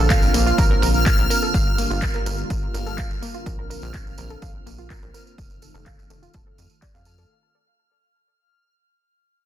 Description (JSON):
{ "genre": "progressive house", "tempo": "125 BPM", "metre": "4/4", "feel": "straight", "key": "Bb major", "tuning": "A4 = 440 Hz", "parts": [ { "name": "lush unison pad", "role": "sustained chords", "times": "0.0-7.3 s", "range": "D3 to F4", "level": "-29 LUFS", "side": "right 1 dB", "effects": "chorus, vintage 12-bit sampler grit, sidechain pumping" }, { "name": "tight sequencer bass", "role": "bass", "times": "0.0-7.3 s", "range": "F1 to F2", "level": "-24 LUFS", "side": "equal", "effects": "sidechain pumping" }, { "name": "backwards swelling texture", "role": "texture", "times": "0.0-7.3 s", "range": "F6", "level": "-28 LUFS", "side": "left 1 dB", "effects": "built-in reverb, sidechain pumping" }, { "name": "analog pluck", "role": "arpeggios", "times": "0.1-7.2 s", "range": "A3 to F5", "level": "-28 LUFS", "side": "right 2 dB", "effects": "chorus, sidechain pumping, ping-pong delay" }, { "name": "electronic kick drum", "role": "drums", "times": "0.1-6.9 s", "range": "none", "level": "-22 LUFS", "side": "equal", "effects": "none" }, { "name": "house drum kit", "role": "drums", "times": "0.1-7.2 s", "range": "handclaps, hi-hat", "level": "-30 LUFS", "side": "equal", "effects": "low-pass filter on hats, low-pass filter on snare" }, { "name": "tambourine", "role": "percussion", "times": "0.1-7.3 s", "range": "none", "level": "-32 LUFS", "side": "right 6 dB", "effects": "none" } ], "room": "light reverb, small room ambience", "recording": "dense, heavily limited modern master", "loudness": "-18 LUFS", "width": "side -12 dB against mid", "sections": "0.0-7.3 A section", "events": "fade-out 0.0-7.3; filter sweep on drum 0.0-7.3; filter sweep on synth pluck 0.0-7.3; filter sweep on analog synth pad 0.0-7.3", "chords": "0.0 Bbadd9; 1.5 Gm7; 3.5 Bbadd9; 5.4 F7" }